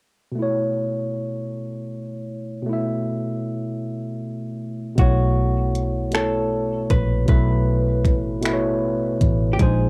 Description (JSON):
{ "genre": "slow six-eight R&B", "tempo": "52 BPM (dotted quarters)", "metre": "6/8", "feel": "straight", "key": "unclear", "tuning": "A4 = 440 Hz", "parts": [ { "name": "barky tine electric piano", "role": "accompaniment", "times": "0.3-9.9 s", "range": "A#2 to E5", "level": "-26 LUFS", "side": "equal", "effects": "overdrive, cassette tape, plate reverb" }, { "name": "vintage hollow-body jazz guitar", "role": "melody", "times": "5.0-9.9 s", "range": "F#4 to B4", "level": "-30 LUFS", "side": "equal", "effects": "cassette tape, plate reverb" }, { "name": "vintage muted fingered electric bass", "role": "bass", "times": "5.0-9.9 s", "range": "A1 to B1", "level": "-24 LUFS", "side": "equal", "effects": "none" }, { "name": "smooth R&B drum kit", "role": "drums", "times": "5.0-9.8 s", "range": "finger snaps, hi-hat, kick drum", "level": "-22 LUFS", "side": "equal", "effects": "none" } ], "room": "light reverb", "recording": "home recording on cassette", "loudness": "-22 LUFS", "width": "mono", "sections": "0.4-5.0 A section; 5.0-9.9 B section", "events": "none", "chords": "0.4 B9sus4" }